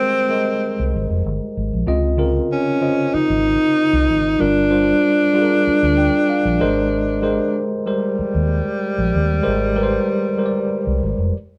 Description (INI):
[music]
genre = lush 1970s-style soul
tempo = 95 BPM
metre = 4/4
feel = straight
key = unclear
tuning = A4 = 441 Hz
[part]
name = breathy alto saxophone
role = melody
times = 0.0-11.3 s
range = G3 to Eb4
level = -21 LUFS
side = equal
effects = none
[part]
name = tine electric piano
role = accompaniment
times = 0.0-11.4 s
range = Db3 to G5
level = -23 LUFS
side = equal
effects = overdrive
[part]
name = vintage muted fingered electric bass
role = bass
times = 0.8-11.3 s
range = F1 to Eb2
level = -23 LUFS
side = equal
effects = none
[sound]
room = moderate studio reverb, RT60 0.7 s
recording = band playing live in one room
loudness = -18 LUFS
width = mono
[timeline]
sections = 0.0-11.6 A section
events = tine electric piano fill 5.7-6.9; stop 11.3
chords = 0.0 Abmaj9; 1.9 Dbmaj9; 4.4 Gm7; 6.6 Abmaj9